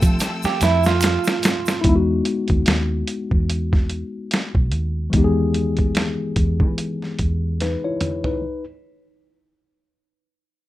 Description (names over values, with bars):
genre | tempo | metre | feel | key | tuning
R&B, neo-soul | 73 BPM | 4/4 | swing 57% on 16ths | E major | A4 = 440 Hz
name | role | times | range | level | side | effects
tine electric piano | accompaniment | 0.0-8.6 s | E3 to E5 | -23 LUFS | left 3 dB | none
warm studio string section | sustained chords | 0.0-1.8 s | E#4 to E6 | -32 LUFS | left 2 dB | none
vintage muted fingered electric bass | bass | 0.0-7.7 s | B1 to F3 | -22 LUFS | equal | none
boom bap sampler-style drum kit | drums | 0.0-8.4 s | hi-hat, kick drum, snare drum, toms | -20 LUFS | equal | none
egg shaker and finger snaps | percussion | 0.0-1.8 s | none | -33 LUFS | right 6 dB | none
electric guitar through a small old amp | second line | 0.5-1.8 s | E4 to G4 | -21 LUFS | right 7 dB | plate reverb
room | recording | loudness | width
light reverb | rough home demo mix | -18 LUFS | side -15 dB against mid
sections
0.0-1.8 A section; 1.8-8.4 B section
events
drum fill 0.2-1.8, 7.6-8.4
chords
0.0 Fmaj9; 1.8 Emaj9